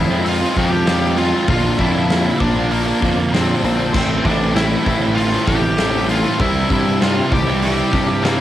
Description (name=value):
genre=quiet-loud alternative rock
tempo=98 BPM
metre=4/4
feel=straight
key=A phrygian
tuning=A4 = 441 Hz
part: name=octave-fuzz lead guitar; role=melody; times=0.0-8.4 s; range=Bb3 to G5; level=-22 LUFS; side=left 1 dB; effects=distortion, cassette tape
part: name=raw garage guitar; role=riff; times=0.0-8.4 s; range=A2 to F4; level=-23 LUFS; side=left 8 dB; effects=overdrive, cassette tape
part: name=fuzz picked electric bass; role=bass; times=0.0-8.4 s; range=A1 to G2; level=-20 LUFS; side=equal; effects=overdrive
part: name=thick fuzz guitar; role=riff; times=0.1-8.4 s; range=A2 to F4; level=-20 LUFS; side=right 5 dB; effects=distortion, cassette tape
part: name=huge arena drum kit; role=drums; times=0.3-8.4 s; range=crash cymbal, hi-hat, kick drum, snare drum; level=-22 LUFS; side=equal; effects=cassette tape
part: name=distorted electric guitar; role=riff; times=3.9-8.4 s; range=A2 to C4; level=-28 LUFS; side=equal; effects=none
room=light reverb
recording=home recording on cassette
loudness=-14 LUFS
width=side -12 dB against mid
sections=0.0-8.4 A section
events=none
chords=0.0 Fm; 1.5 Bb; 3.9 Am; 6.4 C